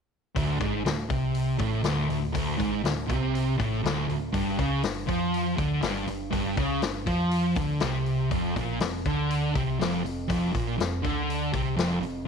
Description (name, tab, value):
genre	blues rock power trio and southern rock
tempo	121 BPM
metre	4/4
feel	straight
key	D minor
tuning	A4 = 440 Hz
part	thick fuzz guitar	riff	0.4-12.3 s	D2 to F3	-26 LUFS	right 1 dB	distortion
part	vintage muted picked electric bass	bass	0.4-12.3 s	D1 to F2	-34 LUFS	right 1 dB	none
part	vintage drum kit	drums	0.4-12.1 s	hi-hat, kick drum, snare drum	-32 LUFS	left 4 dB	none
room	light reverb, small room ambience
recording	1960s-style stereo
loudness	-25 LUFS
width	side -6 dB against mid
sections	0.4-12.3 A section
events	none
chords	0.4 D5; 4.3 G5; 8.3 F5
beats	| 0.36 0.85 1.35 1.85 | 2.35 2.84 3.34 3.84 | 4.34 4.83 5.33 5.83 | 6.33 6.82 7.32 7.82 | 8.31 8.81 9.30 9.80 | 10.30 10.79 11.29 11.78 | 12.28